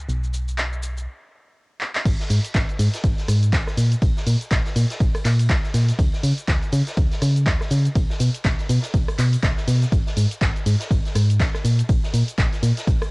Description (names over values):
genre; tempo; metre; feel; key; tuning
piano house; 122 BPM; 4/4; swing 59% on 16ths; unclear; A4 = 442 Hz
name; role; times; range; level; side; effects
solid FM bass; bass; 0.0-13.0 s; G#1 to C#3; -19 LUFS; equal; sidechain pumping
punchy analog drum machine; drums; 0.1-13.1 s; cabasa, crash cymbal, handclaps, hi-hat, rim click; -28 LUFS; equal; cassette tape
electronic kick drum; drums; 2.1-13.0 s; none; -21 LUFS; equal; overdrive, cassette tape
raw garage drum kit; drums; 2.1-13.1 s; hi-hat, snare drum; -36 LUFS; equal; sidechain pumping on hats, high-pass filter on hats, cassette tape, high-pass filter on snare, high-pass filter on room
room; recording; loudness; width
studio ambience; home recording on cassette; -18 LUFS; side -30 dB against mid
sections
0.0-2.1 A section; 2.1-13.1 B section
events
filter sweep on drum 0.0-2.1; stop 1.1-2.1; drum fill 1.8; drop 2.1-13.1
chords
none